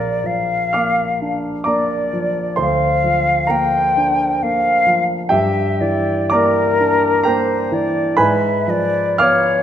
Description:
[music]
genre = classical, romantic duo for flute and grand piano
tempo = 56-67 BPM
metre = 3/4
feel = rubato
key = unclear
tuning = A4 = 439 Hz
[part]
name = concert flute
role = melody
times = 0.0-9.6 s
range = Bb4 to G5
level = -18 LUFS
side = left 2 dB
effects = none
[part]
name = warm concert grand piano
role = accompaniment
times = 0.0-9.6 s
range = Bb1 to F6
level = -17 LUFS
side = right 1 dB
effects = none
[sound]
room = wet recital hall reverb, RT60 1.6 s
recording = none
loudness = -14 LUFS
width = side -10 dB against mid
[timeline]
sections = 0.0-9.6 A section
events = none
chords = 0.0 Bb; 2.6 Bb/D; 5.3 Em7b5/G; 8.2 G#dim7

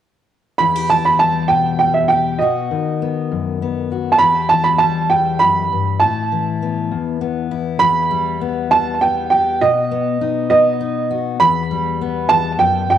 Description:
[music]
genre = folk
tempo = 67 BPM (dotted quarters)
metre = 6/8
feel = straight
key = E harmonic minor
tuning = A4 = 437 Hz
[part]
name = warm upright piano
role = melody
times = 0.6-13.0 s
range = D#5 to B5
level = -15 LUFS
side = right 4 dB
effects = cassette tape, tape echo
[part]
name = fingerpicked steel-string acoustic guitar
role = accompaniment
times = 0.6-13.0 s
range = E2 to G4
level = -20 LUFS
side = left 8 dB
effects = none
[sound]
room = light reverb, studio ambience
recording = home recording on cassette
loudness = -14 LUFS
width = side -10 dB against mid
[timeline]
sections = 0.6-7.8 A section; 7.8-13.0 B section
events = none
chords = 0.6 Em; 2.4 B; 4.2 Em; 6.0 Asus2; 7.8 Em; 9.6 B; 11.4 Em

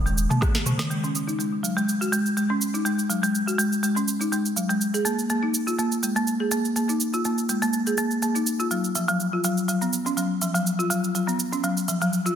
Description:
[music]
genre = afro house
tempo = 123 BPM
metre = 4/4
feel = swing 54% on 16ths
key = G# dorian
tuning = A4 = 440 Hz
[part]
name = folk marimba with medium hard mallets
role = arpeggios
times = 0.0-12.4 s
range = C#3 to G#4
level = -23 LUFS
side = equal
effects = sidechain pumping, low-pass filter, tape echo
[part]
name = afro-pop drum kit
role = drums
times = 0.1-12.3 s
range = cabasa, rim click, snare drum, toms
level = -29 LUFS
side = right 2 dB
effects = none
[part]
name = electronic kick drum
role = drums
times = 0.4-0.5 s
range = none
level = -25 LUFS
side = equal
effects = overdrive
[sound]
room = moderate plate reverb, RT60 1.4 s, digital ambience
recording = dense, heavily limited modern master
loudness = -22 LUFS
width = side -9 dB against mid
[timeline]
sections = 0.9-12.4 A section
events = drum fill 0.5-0.9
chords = none

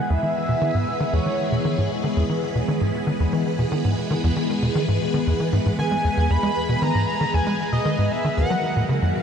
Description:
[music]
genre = ambient, sequencer-driven space music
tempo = 116 BPM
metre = 4/4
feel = straight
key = E lydian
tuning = A4 = 438 Hz
[part]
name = pulse-width lead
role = melody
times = 0.0-1.9, 5.8-8.9 s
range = C#5 to B5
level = -26 LUFS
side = right 1 dB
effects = chorus, tape echo
[part]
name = phased string machine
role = sustained chords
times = 0.0-9.2 s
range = D#3 to B4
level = -24 LUFS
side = left 1 dB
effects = ensemble chorus, phaser
[part]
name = pulsing gated texture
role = texture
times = 2.4-9.2 s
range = F#5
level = -44 LUFS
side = right 2 dB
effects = none
[part]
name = tight sequencer bass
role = riff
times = 0.1-9.1 s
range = D#2 to G#3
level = -23 LUFS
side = equal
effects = wide subtle chorus, tape echo
[sound]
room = wet huge ambient reverb, RT60 7.2 s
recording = none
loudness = -20 LUFS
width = side -7 dB against mid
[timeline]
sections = 0.0-9.2 A section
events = none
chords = 0.0 E; 8.4 D#m

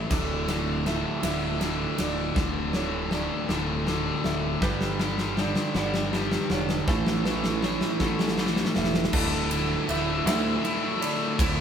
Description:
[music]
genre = post-rock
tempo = 53 BPM (dotted quarters)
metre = 6/8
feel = straight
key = D major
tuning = A4 = 444 Hz
[part]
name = pedal steel guitar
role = sustained chords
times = 0.0-11.6 s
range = E3 to A5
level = -41 LUFS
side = right 2 dB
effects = none
[part]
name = felt-muted upright piano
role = arpeggios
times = 0.0-11.6 s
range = A4 to E5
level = -37 LUFS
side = right 4 dB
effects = none
[part]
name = semi-hollow electric guitar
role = arpeggios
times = 0.0-11.6 s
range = D2 to E4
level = -36 LUFS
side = left 3 dB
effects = spring reverb
[part]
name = cranked stack guitar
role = riff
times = 0.0-11.6 s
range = D2 to E4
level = -30 LUFS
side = left 6 dB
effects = overdrive
[part]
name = growling picked electric bass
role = bass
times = 0.0-11.6 s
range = D1 to D2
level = -33 LUFS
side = equal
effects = overdrive
[part]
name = distorted electric guitar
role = riff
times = 0.1-11.6 s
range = D2 to E4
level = -31 LUFS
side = right 5 dB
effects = distortion
[part]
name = huge arena drum kit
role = drums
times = 0.1-11.6 s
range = crash cymbal, kick drum, ride cymbal, snare drum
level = -28 LUFS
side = equal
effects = none
[sound]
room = wet studio reverb, RT60 0.6 s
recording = band playing live in one room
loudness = -24 LUFS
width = side -8 dB against mid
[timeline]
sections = 0.0-9.1 A section; 9.1-11.6 B section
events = build-up 0.0-9.1; drum fill 0.0-9.1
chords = 0.1 Dadd9; 4.6 G; 6.9 A; 9.1 Dadd9

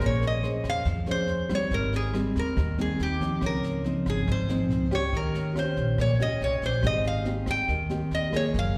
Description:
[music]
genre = bossa nova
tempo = 140 BPM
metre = 4/4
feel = straight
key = Ab major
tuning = A4 = 440 Hz
[part]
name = lap resonator guitar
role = melody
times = 0.0-8.8 s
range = G4 to G5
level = -32 LUFS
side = equal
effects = plate reverb, slapback echo
[part]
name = nylon-string guitar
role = accompaniment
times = 0.0-8.8 s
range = Ab2 to C5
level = -31 LUFS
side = equal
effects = plate reverb, slapback echo
[part]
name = upright bass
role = bass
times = 0.0-8.8 s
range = Gb1 to F2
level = -32 LUFS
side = equal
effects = none
[part]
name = jazz brush drum kit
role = drums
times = 0.0-8.8 s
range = kick drum, rim click, snare drum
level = -37 LUFS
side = equal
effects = none
[sound]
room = moderate club reverb, RT60 0.5 s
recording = live gig heard through the venue's PA, recital hall reverb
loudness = -27 LUFS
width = mono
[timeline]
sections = 0.0-8.8 A section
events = none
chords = 0.0 Bbm9; 1.7 Abmaj7; 3.4 Dbmaj9; 5.1 Eb9; 6.8 Abmaj7

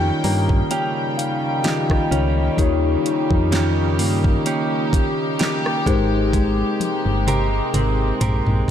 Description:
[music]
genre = contemporary R&B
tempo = 64 BPM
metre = 4/4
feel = swing 54% on 16ths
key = unclear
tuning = A4 = 441 Hz
[part]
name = mellow tine electric piano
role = accompaniment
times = 0.0-8.7 s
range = Eb3 to Bb5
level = -23 LUFS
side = left 5 dB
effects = lush chorus
[part]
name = dark studio string section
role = sustained chords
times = 0.0-8.7 s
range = C3 to G5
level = -24 LUFS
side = equal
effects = none
[part]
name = direct-recorded clean electric guitar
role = arpeggios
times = 0.0-8.7 s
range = Eb3 to Bb4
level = -26 LUFS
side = right 8 dB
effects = analog delay
[part]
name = solid FM bass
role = bass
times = 0.0-8.6 s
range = G1 to G2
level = -21 LUFS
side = equal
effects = none
[part]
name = smooth R&B drum kit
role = drums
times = 0.2-8.7 s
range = hi-hat, kick drum, rim click, snare drum, toms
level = -22 LUFS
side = equal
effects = none
[sound]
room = moderate plate reverb, RT60 2.7 s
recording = dreamy mix soaked in reverb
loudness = -17 LUFS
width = side -9 dB against mid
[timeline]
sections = 0.0-8.7 A section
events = tine electric piano fill 0.0-2.6; drum fill 6.3-8.7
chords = 0.0 Eb7; 5.9 Abmaj9

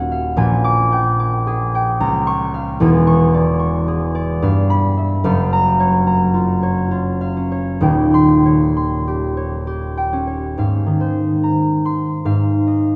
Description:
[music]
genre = classical, solo harp piece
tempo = 64-75 BPM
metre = 3/4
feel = rubato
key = unclear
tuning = A4 = 435 Hz
[part]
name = concert harp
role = solo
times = 0.0-13.0 s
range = Eb1 to D6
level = -17 LUFS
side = equal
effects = none
[sound]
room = wet cathedral reverb, RT60 4.7 s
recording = none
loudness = -17 LUFS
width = mono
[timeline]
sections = 0.0-10.6 A section; 10.6-13.0 B section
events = none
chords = 0.4 Bb6; 2.0 Db6; 2.8 E6; 4.4 G6; 5.2 Gbmaj7; 7.8 Eb13; 10.6 Ab69; 12.3 Fm7/Ab

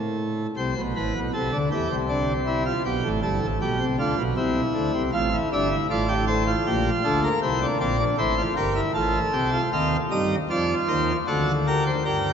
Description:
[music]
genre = classical, baroque-style 3-part fugue for pipe organ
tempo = 78 BPM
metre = 3/4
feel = straight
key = F major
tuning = A4 = 435 Hz
[part]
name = pipe organ, plenum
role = solo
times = 0.0-12.3 s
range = G1 to G5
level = -21 LUFS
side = equal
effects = none
[sound]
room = wet cathedral reverb, RT60 5.2 s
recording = nothing above 7.7 kHz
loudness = -21 LUFS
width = side -7 dB against mid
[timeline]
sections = 0.0-9.7 A section; 9.7-12.3 B section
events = none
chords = 0.0 N.C.; 0.6 C; 2.1 Dm7/C; 2.8 G7; 4.4 C; 5.1 F; 6.6 Gm7/Bb; 7.4 C7; 8.9 F/A; 9.7 Cm/Eb; 11.3 D7

